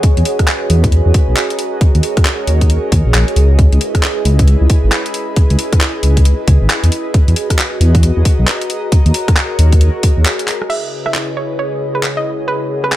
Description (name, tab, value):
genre	UK garage, two-step garage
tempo	135 BPM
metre	4/4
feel	swing 62% on 16ths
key	C# dorian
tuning	A4 = 440 Hz
part	airy breathy pad	sustained chords	0.0-13.0 s	C#3 to D#5	-23 LUFS	equal	chorus, vintage 12-bit sampler grit, sidechain pumping
part	electronic kick drum	drums	0.0-10.1 s	none	-12 LUFS	equal	small room reverb
part	garage drum kit	drums	0.0-13.0 s	crash cymbal, handclaps, hi-hat, rim click	-18 LUFS	equal	small room reverb
part	deep dark ambient pad	texture	0.0-13.0 s	G#4 to B5	-23 LUFS	right 1 dB	chorus, built-in reverb, sidechain pumping
part	dark detuned saw bass	bass	0.2-10.3 s	G#1 to E2	-10 LUFS	equal	none
part	hollow square pluck	melody	10.7-13.0 s	B4 to E5	-20 LUFS	right 3 dB	chorus, dub echo
room	little or no reverb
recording	none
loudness	-11 LUFS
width	side -14 dB against mid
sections	0.0-10.7 A section; 10.7-13.0 B section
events	break 10.3-10.7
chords	0.0 Emaj9; 1.8 D#m7; 3.6 C#m7; 7.1 Emaj9; 8.9 D#m7; 10.7 C#m7